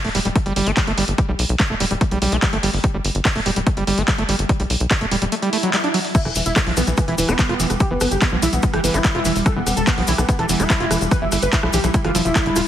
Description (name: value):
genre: psychedelic trance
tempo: 145 BPM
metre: 4/4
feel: straight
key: E phrygian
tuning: A4 = 440 Hz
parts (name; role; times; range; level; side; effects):
- overdriven acid bass; riff; 0.0-12.6 s; D3 to F4; -23 LUFS; right 1 dB; distortion, auto-pan, sidechain pumping, ping-pong delay
- tight sequencer bass; bass; 0.0-12.6 s; D1 to B1; -23 LUFS; equal; none
- techno drum kit; drums; 0.0-12.6 s; crash cymbal, handclaps, hi-hat, rim click; -23 LUFS; equal; none
- electronic kick drum; drums; 0.4-12.4 s; none; -19 LUFS; equal; overdrive
- swell; sound effects; 5.4-6.1 s; none; -27 LUFS; right 3 dB; none
- wide unison lead; melody; 6.1-12.7 s; E3 to B4; -23 LUFS; equal; phaser, sidechain pumping, digital delay
- evolving wavetable pad; sustained chords; 6.4-12.7 s; G3; -27 LUFS; right 1 dB; ensemble chorus, built-in reverb, phaser, sidechain pumping
- cabasa; percussion; 6.1-12.6 s; none; -29 LUFS; left 5 dB; none
room: moderate lush hall reverb, RT60 1.6 s, digital ambience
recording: heavily compressed radio sound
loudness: -16 LUFS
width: side -11 dB against mid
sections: 0.0-12.7 A section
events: swell 5.4-6.1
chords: 0.0 G5; 6.1 E5